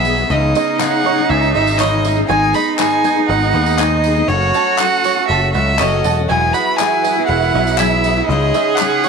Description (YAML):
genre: indie folk with a building arrangement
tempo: 120 BPM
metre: 4/4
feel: straight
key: unclear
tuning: A4 = 439 Hz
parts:
  - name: rich fiddle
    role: melody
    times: 0.0-9.1 s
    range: C#5 to B5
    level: -17 LUFS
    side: equal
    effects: none
  - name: rich cello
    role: second line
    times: 0.0-9.1 s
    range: B3 to G#4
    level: -19 LUFS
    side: right 12 dB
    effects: slapback echo
  - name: picked steel-string acoustic guitar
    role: accompaniment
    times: 0.0-9.1 s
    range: G#2 to A4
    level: -21 LUFS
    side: left 15 dB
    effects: none
  - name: dark studio string section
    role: sustained chords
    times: 0.0-9.1 s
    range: C#3 to B4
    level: -26 LUFS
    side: left 1 dB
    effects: none
  - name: bluegrass banjo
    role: arpeggios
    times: 0.0-9.1 s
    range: G#4 to A5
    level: -23 LUFS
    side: right 13 dB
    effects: none
  - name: picked electric bass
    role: bass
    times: 0.0-8.5 s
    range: E1 to D#2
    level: -18 LUFS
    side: left 1 dB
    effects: none
  - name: tambourine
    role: percussion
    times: 0.0-9.1 s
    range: none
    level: -31 LUFS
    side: right 15 dB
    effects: none
  - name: group handclap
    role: percussion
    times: 0.8-8.9 s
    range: none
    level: -22 LUFS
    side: left 16 dB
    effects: none
room: light reverb, small room ambience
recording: 1960s-style stereo with parts hard left and right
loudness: -12 LUFS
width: side -5 dB against mid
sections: 0.0-9.1 A section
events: none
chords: 0.3 C#madd9; 2.3 G#m; 4.3 F#m; 6.3 Eadd9; 8.3 C#madd9